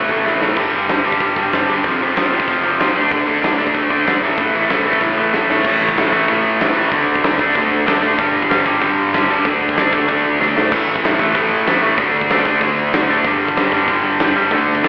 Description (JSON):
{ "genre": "punk rock", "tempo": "190 BPM", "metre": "4/4", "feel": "straight", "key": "A minor", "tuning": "A4 = 440 Hz", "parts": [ { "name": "biting overdriven guitar", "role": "riff", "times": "0.0-14.9 s", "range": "F2 to D4", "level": "-14 LUFS", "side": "equal", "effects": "slapback echo" }, { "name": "overdriven picked electric bass", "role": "bass", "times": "0.0-14.9 s", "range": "F1 to A2", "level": "-30 LUFS", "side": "equal", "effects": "none" }, { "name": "big rock drum kit", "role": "drums", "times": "0.1-14.9 s", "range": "crash cymbal, hi-hat, kick drum, snare drum, splash cymbal", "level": "-21 LUFS", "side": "equal", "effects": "none" } ], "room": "light reverb", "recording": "live gig heard through the venue's PA, club reverb, telephone sound", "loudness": "-13 LUFS", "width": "side -32 dB against mid", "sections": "0.0-5.7 A section; 5.7-14.9 B section", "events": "drum fill 0.3-0.6, 5.0-5.7, 10.4-10.7", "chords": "0.0 A5; 0.6 G5; 1.8 F5; 3.0 Dm/F; 4.2 A5; 6.9 D5; 8.2 G5; 9.4 D5; 10.7 A5; 12.0 D5; 13.2 G5", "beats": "0.26 | 0.57 0.89 1.21 1.53 | 1.84 2.16 2.48 2.79 | 3.11 3.43 3.75 4.06 | 4.38 4.70 5.02 5.33 | 5.65 5.97 6.28 6.60 | 6.92 7.23 7.55 7.87 | 8.18 8.50 8.82 9.13 | 9.45 9.77 10.08 10.40 | 10.72 11.03 11.35 11.67 | 11.98 12.30 12.62 12.93 | 13.25 13.57 13.88 14.20 | 14.52 14.83" }